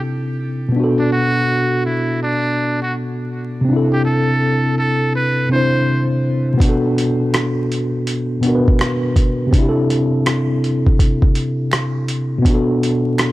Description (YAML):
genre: lo-fi hip hop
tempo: 82 BPM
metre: 4/4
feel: swing 65% on 16ths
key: B phrygian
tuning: A4 = 439 Hz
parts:
  - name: tine electric piano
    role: accompaniment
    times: 0.0-13.3 s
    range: B2 to C5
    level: -16 LUFS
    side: equal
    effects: medium stereo tremolo, low-pass filter
  - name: trumpet with metal mute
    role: melody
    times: 1.0-6.1 s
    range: D4 to C5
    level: -21 LUFS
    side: right 1 dB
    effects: low-pass filter, tape echo
  - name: lo-fi sampler-style drum kit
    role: drums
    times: 6.6-13.3 s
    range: hi-hat, kick drum, rim click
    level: -16 LUFS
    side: equal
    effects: none
  - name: finger snap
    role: percussion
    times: 7.3-13.3 s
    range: none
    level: -34 LUFS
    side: right 4 dB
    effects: none
room: light reverb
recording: vinyl crackle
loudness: -15 LUFS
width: side -17 dB against mid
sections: 0.0-13.3 A section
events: none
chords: 0.0 C69; 0.7 Bm7; 3.7 C69; 6.6 Bm7; 9.5 C69; 12.5 Bm7